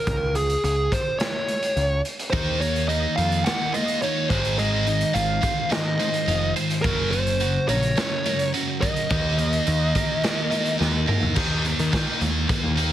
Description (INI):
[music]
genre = quiet-loud alternative rock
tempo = 106 BPM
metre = 4/4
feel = straight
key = unclear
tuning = A4 = 441 Hz
[part]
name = fuzz lead guitar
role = melody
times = 0.0-10.8 s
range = Ab4 to Gb5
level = -25 LUFS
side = equal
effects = distortion
[part]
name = growling picked electric bass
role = bass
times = 0.1-12.9 s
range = F1 to Eb3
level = -25 LUFS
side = left 1 dB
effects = overdrive
[part]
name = raw garage drum kit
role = drums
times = 0.1-12.9 s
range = crash cymbal, hi-hat, kick drum, snare drum, toms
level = -27 LUFS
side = equal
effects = none
[part]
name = twelve-string electric guitar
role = arpeggios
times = 2.3-11.4 s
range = Eb3 to C5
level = -31 LUFS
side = right 8 dB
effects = phaser
[part]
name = heavy high-gain guitar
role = riff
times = 2.3-12.9 s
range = Gb2 to Eb4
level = -25 LUFS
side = equal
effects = distortion
[sound]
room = light reverb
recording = heavily compressed radio sound, multiband compression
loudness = -20 LUFS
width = side -12 dB against mid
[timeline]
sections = 0.0-11.4 A section; 11.4-12.9 B section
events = half time 0.0-11.4; drum fill 10.8-11.4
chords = 0.1 Bbm7/Db (rootless); 2.3 Ebsus2; 4.3 Ab6; 6.9 Gb; 9.1 Eb5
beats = | 0.07 0.63 1.20 1.76 | 2.33 2.89 3.46 4.02 | 4.59 5.16 5.72 6.29 | 6.85 7.42 7.98 8.55 | 9.11 9.68 10.24 10.80 | 11.37 11.93 12.50